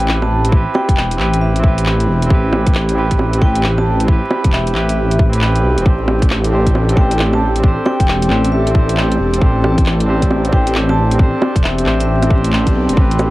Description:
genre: future garage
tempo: 135 BPM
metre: 4/4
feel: swing 64% on 16ths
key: A minor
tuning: A4 = 440 Hz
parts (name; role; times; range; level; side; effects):
- vibraphone with medium hard mallets; melody; 0.0-12.3 s; E5 to A5; -24 LUFS; left 2 dB; analog delay
- barky tine electric piano; accompaniment; 0.0-13.3 s; C4 to C5; -21 LUFS; right 2 dB; overdrive, sidechain pumping, tape echo
- airy breathy pad; sustained chords; 0.4-13.3 s; E3 to G4; -22 LUFS; equal; chorus, sidechain pumping
- swelling detuned saw bass; bass; 0.0-13.3 s; E1 to B1; -16 LUFS; equal; sidechain pumping
- garage drum kit; drums; 0.0-13.3 s; bongos, cabasa, handclaps, hi-hat; -20 LUFS; right 1 dB; none
- electronic kick drum; drums; 0.5-13.1 s; none; -13 LUFS; equal; none
- backwards swelling texture; texture; 7.2-13.0 s; A4; -31 LUFS; equal; none
room: light reverb, digital ambience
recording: vinyl crackle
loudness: -12 LUFS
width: side -18 dB against mid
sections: 0.0-13.0 A section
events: band accent 12.5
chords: 0.0 Am7

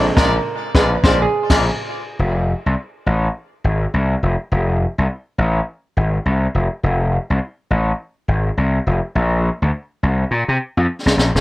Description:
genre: funk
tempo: 104 BPM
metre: 4/4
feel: swing 60% on 16ths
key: unclear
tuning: A4 = 440 Hz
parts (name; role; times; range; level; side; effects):
- warm horn section; second line; 0.0-1.6 s; Ab3 to D5; -23 LUFS; left 2 dB; tape echo
- mellow clav; stabs; 0.0-1.8 s; Ab3 to C5; -21 LUFS; right 4 dB; tape echo
- gritty slap bass; bass; 0.0-11.4 s; E1 to C3; -16 LUFS; left 1 dB; overdrive
- jazz brush drum kit; drums; 0.2-1.7, 11.1-11.4 s; crash cymbal, kick drum, snare drum; -17 LUFS; left 1 dB; none
room: small room ambience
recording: none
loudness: -16 LUFS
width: side -18 dB against mid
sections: 0.0-2.2 A section; 2.2-11.4 B section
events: band accent 0.0-2.2; clav solo 0.0-2.2; drum fill 10.3-11.4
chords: 0.0 Bb9; 2.2 F; 9.2 Bbsus2

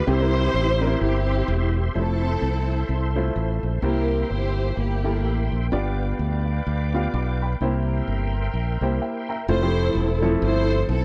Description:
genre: gospel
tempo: 128 BPM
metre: 4/4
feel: swing 58% on 8ths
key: F major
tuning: A4 = 440 Hz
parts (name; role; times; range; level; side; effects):
- dark studio string section; melody; 0.0-5.7, 9.5-11.0 s; Bb3 to C5; -28 LUFS; equal; none
- bright tonewheel organ; sustained chords; 0.0-9.5 s; Bb3 to D6; -36 LUFS; equal; slow rotary speaker, chorus vibrato
- warm upright piano; accompaniment; 0.1-10.9 s; G2 to D6; -29 LUFS; equal; none
- modern bright fingered electric bass; bass; 0.1-11.0 s; E1 to D2; -26 LUFS; equal; none
- breathy small flute group; sustained chords; 2.0-9.5 s; C5 to B5; -40 LUFS; equal; none
room: little or no reverb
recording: dry, close 1970s-style studio recording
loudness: -23 LUFS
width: mono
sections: 0.0-1.9 A section; 1.9-9.5 B section; 9.5-11.0 A section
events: upright piano fill 8.8-9.5; break 9.0-9.5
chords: 0.1 C; 1.9 Fmaj7; 3.8 C7; 5.7 G7; 7.6 C7; 9.5 Fmaj7

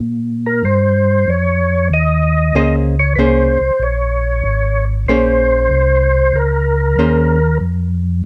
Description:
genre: jazz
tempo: 95 BPM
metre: 4/4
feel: swing 69% on 8ths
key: unclear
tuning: A4 = 443 Hz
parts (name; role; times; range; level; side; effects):
- mellow tonewheel organ; bass; 0.0-8.2 s; Ab1 to Bb2; -18 LUFS; equal; chorus vibrato, slow rotary speaker
- percussive tonewheel organ; melody; 0.5-7.6 s; Bb4 to Eb5; -18 LUFS; equal; slow rotary speaker, overdrive, chorus vibrato, plate reverb
- archtop guitar, miked and amplified; accompaniment; 2.6-7.4 s; Bb3 to C5; -19 LUFS; equal; none
room: moderate studio reverb, RT60 0.6 s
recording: none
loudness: -15 LUFS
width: mono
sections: 0.0-8.3 A section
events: none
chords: 0.0 Bbm9; 7.6 N.C.

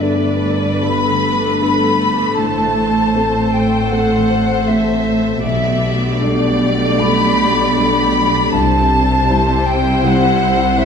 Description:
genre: cinematic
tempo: 78 BPM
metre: 4/4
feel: rubato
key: G major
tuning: A4 = 440 Hz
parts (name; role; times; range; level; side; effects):
- bright studio violin section; melody; 0.0-10.8 s; B4 to D5; -23 LUFS; left 3 dB; none
- concert flute; second line; 0.0-10.8 s; D5 to B5; -20 LUFS; left 2 dB; none
- rich studio violin section; second line; 0.0-10.8 s; D5 to B5; -22 LUFS; left 1 dB; none
- felt-muted upright piano; accompaniment; 0.0-10.8 s; B1 to C5; -22 LUFS; equal; none
- rich studio viola section; accompaniment; 0.0-10.8 s; G3 to A4; -23 LUFS; right 2 dB; none
- concert harp; arpeggios; 0.0-10.8 s; G2 to C5; -21 LUFS; left 8 dB; none
- rich studio cello section; bass; 0.0-10.8 s; G2 to C3; -20 LUFS; right 2 dB; none
- rich studio double bass section; bass; 0.0-10.8 s; G1 to C2; -22 LUFS; right 2 dB; none
room: wet recital hall reverb, RT60 1.6 s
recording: minimal, uncompressed stereo recording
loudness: -12 LUFS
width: side -6 dB against mid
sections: 0.0-10.8 A section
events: none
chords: 0.0 Gadd9; 2.4 Am; 5.4 Gadd9/B; 8.5 C

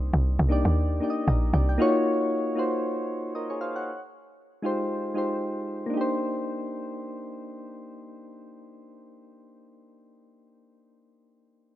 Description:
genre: amapiano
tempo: 116 BPM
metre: 4/4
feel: swing 58% on 16ths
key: C minor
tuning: A4 = 440 Hz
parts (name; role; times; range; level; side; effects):
- soft electric-piano-like synth keys; accompaniment; 0.0-11.8 s; Ab3 to G5; -27 LUFS; left 1 dB; chorus
- woody log drum bass; bass; 0.0-1.8 s; Bb1 to Eb2; -22 LUFS; equal; none
room: light reverb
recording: none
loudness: -24 LUFS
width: side -14 dB against mid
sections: 0.0-5.9 A section; 5.9-10.1 B section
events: none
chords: 0.0 Cm9; 1.8 Ebm9; 3.9 Fm9; 5.9 Cm9

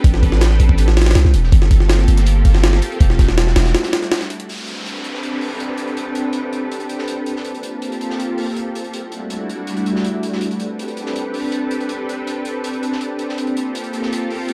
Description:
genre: drum and bass, jungle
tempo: 162 BPM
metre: 4/4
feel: straight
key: A minor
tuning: A4 = 437 Hz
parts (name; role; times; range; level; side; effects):
- soft string machine; sustained chords; 0.0-14.5 s; G3 to B4; -25 LUFS; equal; ensemble chorus
- long sustained 808-style bass; bass; 0.0-3.7 s; E1 to C2; -16 LUFS; equal; none
- crunchy breakbeat drum kit; drums; 0.0-14.5 s; hi-hat, snare drum; -36 LUFS; equal; high-pass filter on hats, studio reverb, high-pass filter on snare, high-pass filter on room
- jungle sampler-style drum kit; drums; 0.0-4.5 s; hi-hat, kick drum, snare drum; -17 LUFS; equal; studio reverb
- downlifter; sound effects; 4.5-7.5 s; none; -33 LUFS; equal; none
room: moderate echo chamber reverb, RT60 1.3 s, studio reverb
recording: dark, warm production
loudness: -18 LUFS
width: mono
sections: 0.0-4.5 A section; 4.5-14.5 B section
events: drop 0.0-4.5; break 3.7-4.5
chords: 0.0 Am11; 1.5 Gm11; 3.0 Em11; 4.5 Am11; 7.5 Gm11; 8.9 Em11; 10.4 Am11; 13.4 Gm11

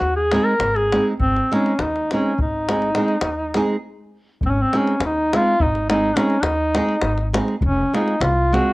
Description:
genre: balkan folk, Balkan wedding band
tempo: 206 BPM (eighths)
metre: 11/8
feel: straight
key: Ab major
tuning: A4 = 439 Hz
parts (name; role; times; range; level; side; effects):
- warm duduk; melody; 0.0-8.7 s; C4 to Bb4; -20 LUFS; equal; cassette tape
- upright bass; bass; 0.0-8.6 s; F1 to Eb2; -24 LUFS; equal; none
- flamenco guitar; accompaniment; 0.3-8.7 s; Ab3 to Ab4; -22 LUFS; right 2 dB; cassette tape
- davul; percussion; 0.3-8.7 s; none; -25 LUFS; left 2 dB; none
room: moderate studio reverb, RT60 0.6 s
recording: home recording on cassette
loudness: -17 LUFS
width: side -21 dB against mid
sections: 0.0-4.4 A section; 4.4-8.7 A section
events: stop 3.8-4.4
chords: 0.0 Ab; 7.6 Fm

